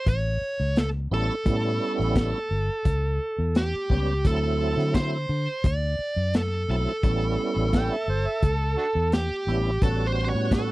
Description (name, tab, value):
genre	straight-eighth soul blues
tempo	86 BPM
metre	4/4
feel	straight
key	A mixolydian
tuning	A4 = 440 Hz
part	dark smooth lead guitar	melody	0.0-10.7 s	G4 to D5	-28 LUFS	right 1 dB	overdrive
part	vintage muted fingered electric bass	bass	0.1-10.7 s	G1 to D3	-26 LUFS	left 1 dB	none
part	crunchy breakbeat drum kit	drums	0.1-10.7 s	hi-hat, kick drum, snare drum	-24 LUFS	left 1 dB	none
part	tonewheel organ	accompaniment	1.1-10.7 s	F#3 to G4	-28 LUFS	right 3 dB	slow rotary speaker, overdrive, chorus vibrato
part	overdriven harmonica	second line	7.7-9.1 s	D4 to G5	-29 LUFS	right 3 dB	none
room	little or no reverb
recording	dry, close 1970s-style studio recording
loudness	-22 LUFS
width	side -18 dB against mid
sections	0.0-10.7 A section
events	none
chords	0.0 A7; 4.2 D7; 7.0 A7